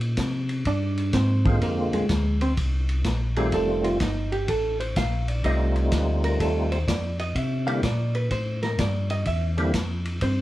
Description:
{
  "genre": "soul jazz organ trio",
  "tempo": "126 BPM",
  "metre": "4/4",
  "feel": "swing 66% on 8ths",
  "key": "F mixolydian",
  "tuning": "A4 = 440 Hz",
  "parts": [
    { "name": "mellow tonewheel organ", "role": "bass", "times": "0.0-10.4 s", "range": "F1 to C3", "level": "-25 LUFS", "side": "equal", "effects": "overdrive, chorus vibrato, slow rotary speaker" },
    { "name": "vintage drum kit", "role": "drums", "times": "0.0-10.4 s", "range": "hi-hat, kick drum, ride cymbal, snare drum", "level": "-29 LUFS", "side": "equal", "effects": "none" },
    { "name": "vintage hollow-body jazz guitar", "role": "accompaniment", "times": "0.7-10.4 s", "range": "Ab3 to F5", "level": "-28 LUFS", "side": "right 1 dB", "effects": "none" },
    { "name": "percussive tonewheel organ", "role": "melody", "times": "1.5-9.7 s", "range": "D3 to F4", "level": "-26 LUFS", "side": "right 1 dB", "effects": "slow rotary speaker, chorus vibrato" }
  ],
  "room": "moderate studio ambience, RT60 0.5 s",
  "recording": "heard from further back in the room",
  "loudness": "-22 LUFS",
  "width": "side -15 dB against mid",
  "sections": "0.0-10.4 A section",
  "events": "hollow-body jazz guitar solo 0.0-10.4",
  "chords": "0.0 Bb9; 3.5 F9; 7.4 C9"
}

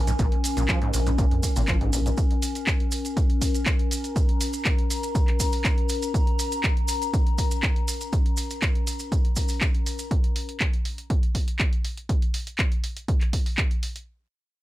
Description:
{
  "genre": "acid house",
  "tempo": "121 BPM",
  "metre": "4/4",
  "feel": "straight",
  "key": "Bb minor",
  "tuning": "A4 = 443 Hz",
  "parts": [
    { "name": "saturated sub bass", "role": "bass", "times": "0.0-2.1 s", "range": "Ab1 to F2", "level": "-25 LUFS", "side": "equal", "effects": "tube saturation, sidechain pumping" },
    { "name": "warbly tape-like pad", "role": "texture", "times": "0.0-10.1 s", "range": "Db4 to Bb5", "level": "-31 LUFS", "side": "left 4 dB", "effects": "chorus, built-in reverb, sidechain pumping" },
    { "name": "overdriven acid bass", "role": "riff", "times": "0.1-2.1 s", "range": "Bb1 to F3", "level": "-30 LUFS", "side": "right 1 dB", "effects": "distortion, tube saturation, lush chorus, vintage 12-bit sampler grit, tape echo" },
    { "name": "punchy analog drum machine", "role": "drums", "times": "0.1-14.1 s", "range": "handclaps, hi-hat", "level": "-30 LUFS", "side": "equal", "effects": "none" },
    { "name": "maracas", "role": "percussion", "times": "0.1-10.1 s", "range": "none", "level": "-34 LUFS", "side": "right 4 dB", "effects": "none" },
    { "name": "electronic kick drum", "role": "drums", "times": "0.2-13.7 s", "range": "none", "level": "-23 LUFS", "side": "equal", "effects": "none" }
  ],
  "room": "light reverb",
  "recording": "none",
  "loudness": "-22 LUFS",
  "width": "side -16 dB against mid",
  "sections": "0.0-14.1 A section",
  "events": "filter sweep on acid bass 0.0-2.2",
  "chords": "0.0 Bbm7"
}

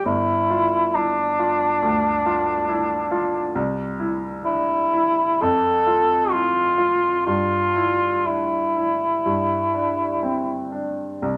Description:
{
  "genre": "classical, romantic duo for cor anglais and grand piano",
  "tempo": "60-71 BPM",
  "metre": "4/4",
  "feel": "rubato",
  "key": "unclear",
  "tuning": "A4 = 443 Hz",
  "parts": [
    { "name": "dark cor anglais", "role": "melody", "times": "0.0-10.7 s", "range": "D4 to A4", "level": "-22 LUFS", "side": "equal", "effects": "none" },
    { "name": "bright baby grand piano", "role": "accompaniment", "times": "0.0-11.4 s", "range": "G1 to F4", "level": "-27 LUFS", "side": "equal", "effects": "none" }
  ],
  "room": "moderate large studio reverb, RT60 1.1 s",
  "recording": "none",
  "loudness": "-21 LUFS",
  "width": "mono",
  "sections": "0.0-11.4 A section",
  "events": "none",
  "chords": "0.1 G5; 3.6 C; 5.4 Fmaj7; 7.3 Em7/G; 9.3 G5"
}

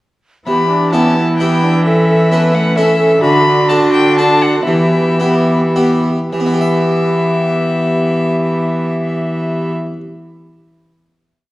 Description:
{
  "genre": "classical, renaissance-style consort dance",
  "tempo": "100-132 BPM",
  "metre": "3/4",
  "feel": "straight",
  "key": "E dorian",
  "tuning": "A4 = 440 Hz",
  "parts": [
    { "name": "rich violin", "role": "melody", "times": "0.5-9.7 s", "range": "E5 to B5", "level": "-18 LUFS", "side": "left 2 dB", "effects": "none" },
    { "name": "tenor recorder", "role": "second line", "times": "0.5-9.7 s", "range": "E4 to B4", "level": "-17 LUFS", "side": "right 2 dB", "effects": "none" },
    { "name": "harpsichord", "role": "accompaniment", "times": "0.5-10.0 s", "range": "D3 to E5", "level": "-19 LUFS", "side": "equal", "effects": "none" },
    { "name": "warm viola", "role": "accompaniment", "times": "0.5-9.7 s", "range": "A3 to D4", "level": "-21 LUFS", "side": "left 1 dB", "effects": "none" },
    { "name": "rich cello", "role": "bass", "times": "0.5-9.7 s", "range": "D3 to E3", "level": "-16 LUFS", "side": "equal", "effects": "none" }
  ],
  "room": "wet recital hall reverb, RT60 1.7 s",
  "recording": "worn, warbling old tape, cassette tape, warbly pitch drift",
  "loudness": "-11 LUFS",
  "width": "side -17 dB against mid",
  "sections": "0.5-6.3 A section; 6.3-9.9 final chord",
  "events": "slowing down 2.5-6.3",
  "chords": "0.5 Em; 1.8 A/E; 3.2 D; 4.7 Em"
}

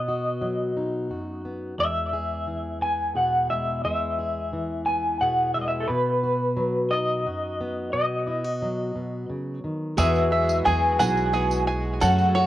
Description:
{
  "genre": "indie folk with a building arrangement",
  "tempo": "59 BPM (dotted quarters)",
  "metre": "6/8",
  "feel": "straight",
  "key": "E major",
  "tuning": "A4 = 440 Hz",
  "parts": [
    { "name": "electric guitar through a small old amp", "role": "melody", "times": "0.0-12.5 s", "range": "A4 to G#5", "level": "-24 LUFS", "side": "equal", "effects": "tremolo, cassette tape, tape echo" },
    { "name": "fingerpicked plugged-in steel-string acoustic guitar", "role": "accompaniment", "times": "0.0-10.0 s", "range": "E2 to G#4", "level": "-29 LUFS", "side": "equal", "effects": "cassette tape" },
    { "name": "clear upright piano", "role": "accompaniment", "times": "10.0-12.5 s", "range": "F#1 to C#5", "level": "-34 LUFS", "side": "right 3 dB", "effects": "none" },
    { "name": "picked twelve-string acoustic guitar", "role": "accompaniment", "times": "10.0-12.5 s", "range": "E3 to A4", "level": "-28 LUFS", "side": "left 3 dB", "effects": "cassette tape" },
    { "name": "hand-pumped harmonium", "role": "sustained chords", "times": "10.0-12.5 s", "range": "C#3 to F#4", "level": "-33 LUFS", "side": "right 2 dB", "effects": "cassette tape" },
    { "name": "bluegrass banjo", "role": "arpeggios", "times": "10.0-12.5 s", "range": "G#4 to G#5", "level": "-28 LUFS", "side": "right 4 dB", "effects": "cassette tape, tape echo" },
    { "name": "upright bass", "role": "bass", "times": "10.0-12.5 s", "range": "B1 to F#2", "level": "-24 LUFS", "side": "right 1 dB", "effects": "none" },
    { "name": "tambourine", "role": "percussion", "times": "10.0-12.4 s", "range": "none", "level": "-39 LUFS", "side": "right 4 dB", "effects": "none" }
  ],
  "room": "light reverb",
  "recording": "home recording on cassette",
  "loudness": "-22 LUFS",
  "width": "side -14 dB against mid",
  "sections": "0.0-10.0 A section; 10.0-12.5 B section",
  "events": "none",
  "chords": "0.0 B; 1.8 E; 5.9 B; 10.0 Eadd9"
}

